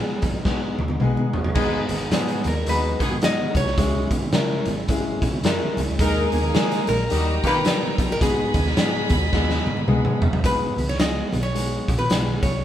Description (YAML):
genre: uptempo 1960s-style soul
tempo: 108 BPM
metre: 4/4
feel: swing 60% on 8ths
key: G# minor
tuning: A4 = 440 Hz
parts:
  - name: metal-body resonator slide guitar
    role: melody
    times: 0.0-12.6 s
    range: G#4 to D#5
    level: -26 LUFS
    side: left 1 dB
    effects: none
  - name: clear concert grand piano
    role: accompaniment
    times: 0.0-12.4 s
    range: G3 to A#4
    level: -27 LUFS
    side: left 2 dB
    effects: none
  - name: percussive tonewheel organ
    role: sustained chords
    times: 0.0-10.4 s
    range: G3 to E4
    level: -32 LUFS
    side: equal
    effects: none
  - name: vintage muted picked electric bass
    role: bass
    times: 0.2-12.6 s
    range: F#1 to D#3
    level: -27 LUFS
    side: right 1 dB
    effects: none
  - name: raw garage drum kit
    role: drums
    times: 0.2-12.5 s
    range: crash cymbal, hi-hat, kick drum, snare drum, toms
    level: -23 LUFS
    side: equal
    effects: none
  - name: congas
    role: percussion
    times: 0.2-12.5 s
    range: none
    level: -32 LUFS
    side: right 2 dB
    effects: none
  - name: clear horn section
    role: second line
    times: 1.5-7.6 s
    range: D#3 to B4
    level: -28 LUFS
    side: right 1 dB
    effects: none
  - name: warm studio violin section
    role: second line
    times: 6.0-10.4 s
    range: D#4 to B5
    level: -28 LUFS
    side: equal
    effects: none
room: moderate studio reverb, RT60 0.5 s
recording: band playing live in one room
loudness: -19 LUFS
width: side -11 dB against mid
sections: 0.0-1.6 A section; 1.6-10.4 B section; 10.4-12.6 A section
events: drum fill 0.5-1.6, 9.3-10.4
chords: 0.0 G#m; 3.8 C#m; 6.0 D#sus4; 7.1 D#; 8.2 G#m